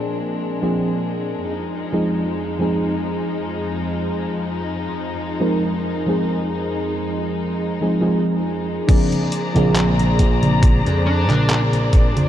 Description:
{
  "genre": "vaporwave",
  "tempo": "69 BPM",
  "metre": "4/4",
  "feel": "swing 54% on 16ths",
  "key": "F dorian",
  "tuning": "A4 = 440 Hz",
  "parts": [
    { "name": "mellow FM electric piano", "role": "accompaniment", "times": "0.0-12.3 s", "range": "F3 to Bb4", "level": "-21 LUFS", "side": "right 1 dB", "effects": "wide subtle chorus, tape echo" },
    { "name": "dark studio string section", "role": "sustained chords", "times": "0.0-12.3 s", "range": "F2 to Bb5", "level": "-26 LUFS", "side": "left 3 dB", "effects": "vintage 12-bit sampler grit" },
    { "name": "detuned 8-bit digital drum machine", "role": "drums", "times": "8.9-12.3 s", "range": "congas, crash cymbal, handclaps, hi-hat", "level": "-21 LUFS", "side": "equal", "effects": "overdrive" },
    { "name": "electronic kick drum", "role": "drums", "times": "8.9-12.1 s", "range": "none", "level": "-14 LUFS", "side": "equal", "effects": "overdrive" },
    { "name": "glassy slap bass", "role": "bass", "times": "9.6-12.3 s", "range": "Bb1 to Bb2", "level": "-19 LUFS", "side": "equal", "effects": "none" },
    { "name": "dark smooth lead guitar", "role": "melody", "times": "11.1-11.6 s", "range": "D4", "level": "-25 LUFS", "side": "right 2 dB", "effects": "overdrive, tape echo" }
  ],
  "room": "moderate huge ambient reverb, RT60 9.0 s",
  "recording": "dreamy mix soaked in reverb, cassette tape",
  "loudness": "-17 LUFS",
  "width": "side -11 dB against mid",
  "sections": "0.0-8.9 A section; 8.9-12.3 B section",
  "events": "none",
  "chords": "0.0 Bb9; 1.5 Fm7; 8.9 Bb9",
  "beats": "0.19 1.06 | 1.93 2.80 3.67 4.54 | 5.41 6.28 7.15 8.02 | 8.89 9.76 10.63 11.50"
}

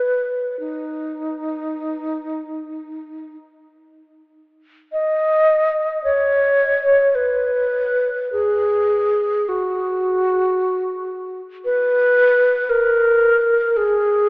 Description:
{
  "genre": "classical, free, expressive piece for unaccompanied alto flute",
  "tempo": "33-60 BPM",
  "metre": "3/4",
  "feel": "rubato",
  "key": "B major",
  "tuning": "A4 = 440 Hz",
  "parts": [
    { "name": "mellow wooden-headed alto flute", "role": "solo", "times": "0.0-14.3 s", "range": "D#4 to D#5", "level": "-16 LUFS", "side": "equal", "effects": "none" }
  ],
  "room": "wet church reverb, RT60 3.7 s",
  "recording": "recorded in a church or concert hall, telephone sound",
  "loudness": "-16 LUFS",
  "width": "side -32 dB against mid",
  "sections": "0.0-4.9 A section; 4.9-14.3 B section",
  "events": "none",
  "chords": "none",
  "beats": "| 0.63 2.06 3.42 | 4.93 6.06 7.18 | 8.34 9.49 10.59 | 11.66 12.69 13.78"
}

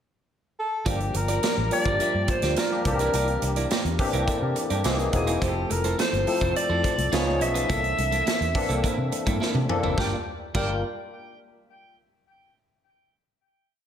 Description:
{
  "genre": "polished 1980s jazz-funk pop",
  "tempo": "105 BPM",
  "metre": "4/4",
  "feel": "straight",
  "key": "G dorian",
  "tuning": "A4 = 440 Hz",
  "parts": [
    { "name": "breathy alto saxophone", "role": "melody", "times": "0.6-10.8 s", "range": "G4 to G5", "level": "-28 LUFS", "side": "left 1 dB", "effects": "tape echo" },
    { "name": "barky tine electric piano", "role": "accompaniment", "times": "0.9-10.8 s", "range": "E3 to D5", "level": "-28 LUFS", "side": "left 2 dB", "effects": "overdrive, ensemble chorus" },
    { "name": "electric guitar at the edge of break-up", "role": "riff", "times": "0.9-10.7 s", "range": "Bb3 to E5", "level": "-32 LUFS", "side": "right 5 dB", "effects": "lush chorus" },
    { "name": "vintage muted fingered electric bass", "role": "bass", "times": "0.9-10.8 s", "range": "E1 to C3", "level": "-28 LUFS", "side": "equal", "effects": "none" },
    { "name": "modern studio drum kit", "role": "drums", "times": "0.9-10.7 s", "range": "crash cymbal, hi-hat, kick drum, snare drum, toms", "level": "-29 LUFS", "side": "right 1 dB", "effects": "none" },
    { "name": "congas", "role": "percussion", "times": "5.7-10.8 s", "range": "none", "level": "-40 LUFS", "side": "left 4 dB", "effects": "none" }
  ],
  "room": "wet plate reverb, RT60 1.8 s",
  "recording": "dreamy mix soaked in reverb",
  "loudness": "-22 LUFS",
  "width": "side -9 dB against mid",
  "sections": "0.0-0.9 pickup bar; 0.9-10.0 verse; 10.0-12.3 final chord",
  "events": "drum fill 9.4-10.0",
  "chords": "0.0 N.C.; 0.9 Gm7; 2.9 C9; 4.8 C7alt; 5.4 Fmaj7; 7.1 C#9; 7.7 C13; 10.0 Gm7",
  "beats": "0.29 | 0.86 1.43 2.00 2.57 | 3.14 3.71 4.28 4.85 | 5.42 5.99 6.56 7.13 | 7.70 8.27 8.84 9.41 | 9.98 10.55"
}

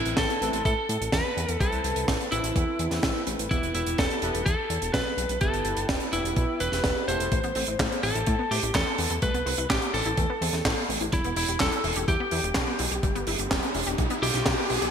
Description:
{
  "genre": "italo disco",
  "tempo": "126 BPM",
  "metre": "4/4",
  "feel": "straight",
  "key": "A minor",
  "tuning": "A4 = 440 Hz",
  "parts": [
    { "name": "lightly driven lead guitar", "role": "melody", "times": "0.0-14.9 s", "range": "E4 to C5", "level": "-29 LUFS", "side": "equal", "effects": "digital delay" },
    { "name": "analog synth brass", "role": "stabs", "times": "0.0-7.3 s", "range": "B3 to B4", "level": "-34 LUFS", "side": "right 1 dB", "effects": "chorus" },
    { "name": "fat analog bass", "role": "bass", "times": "0.0-14.9 s", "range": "E1 to A2", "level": "-31 LUFS", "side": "equal", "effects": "none" },
    { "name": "tight funk drum kit", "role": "drums", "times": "0.1-14.9 s", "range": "handclaps, hi-hat, snare drum", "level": "-29 LUFS", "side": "right 2 dB", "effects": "gated reverb" },
    { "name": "electronic kick drum", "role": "drums", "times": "0.2-14.6 s", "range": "none", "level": "-28 LUFS", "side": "equal", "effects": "none" },
    { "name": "wide unison pluck", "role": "arpeggios", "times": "7.3-14.9 s", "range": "G3 to G4", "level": "-34 LUFS", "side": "left 3 dB", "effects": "vintage 12-bit sampler grit, ping-pong delay" },
    { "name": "riser", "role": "sound effects", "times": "12.7-14.9 s", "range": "none", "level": "-33 LUFS", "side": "equal", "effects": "none" }
  ],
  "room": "moderate lush hall reverb, RT60 2.1 s",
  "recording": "bright 1980s-style digital production",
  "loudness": "-24 LUFS",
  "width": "side -8 dB against mid",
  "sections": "0.0-14.9 A section",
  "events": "riser 12.7-14.9",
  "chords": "0.0 Amadd9; 3.5 Em; 7.3 Amadd9; 11.1 Em",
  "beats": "0.18 0.65 1.13 | 1.60 2.08 2.56 3.03 | 3.51 3.99 4.46 4.94 | 5.41 5.89 6.37 6.84 | 7.32 7.79 8.27 8.75 | 9.22 9.70 10.18 10.65 | 11.13 11.61 12.08 12.56 | 13.03 13.51 13.99 14.46"
}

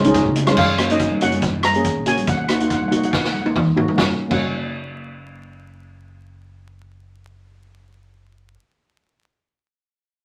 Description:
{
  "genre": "calypso",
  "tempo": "140 BPM",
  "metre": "4/4",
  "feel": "swing 54% on 16ths",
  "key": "F# major",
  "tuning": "A4 = 439 Hz",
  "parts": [
    { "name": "steel pan", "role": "melody", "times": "0.0-8.5 s", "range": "E#4 to A#5", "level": "-26 LUFS", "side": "equal", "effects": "none" },
    { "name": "upright bass", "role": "bass", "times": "0.0-8.5 s", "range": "F#1 to C#3", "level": "-32 LUFS", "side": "equal", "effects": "none" },
    { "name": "street-band drum kit", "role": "drums", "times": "0.0-4.4 s", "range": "crash cymbal, hi-hat, kick drum, rim click, snare drum, toms", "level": "-24 LUFS", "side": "equal", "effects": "none" },
    { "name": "steel pan", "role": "accompaniment", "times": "0.1-8.5 s", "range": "G#3 to G#4", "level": "-23 LUFS", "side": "equal", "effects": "none" },
    { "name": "congas", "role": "percussion", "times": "0.1-4.4 s", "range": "none", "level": "-28 LUFS", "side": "equal", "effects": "none" }
  ],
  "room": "moderate studio reverb, RT60 0.5 s",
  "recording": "vinyl crackle",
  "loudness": "-19 LUFS",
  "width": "mono",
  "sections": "0.6-4.0 A section; 4.0-7.4 B section",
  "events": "drum fill 3.1-4.0",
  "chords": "0.0 C#add9; 0.6 F#; 2.3 D#madd9; 4.0 F#",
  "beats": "0.14 | 0.57 0.99 1.42 1.84 | 2.27 2.70 3.12 3.55 | 3.98 4.40 4.83 5.26 | 5.69 6.11 6.54 6.97"
}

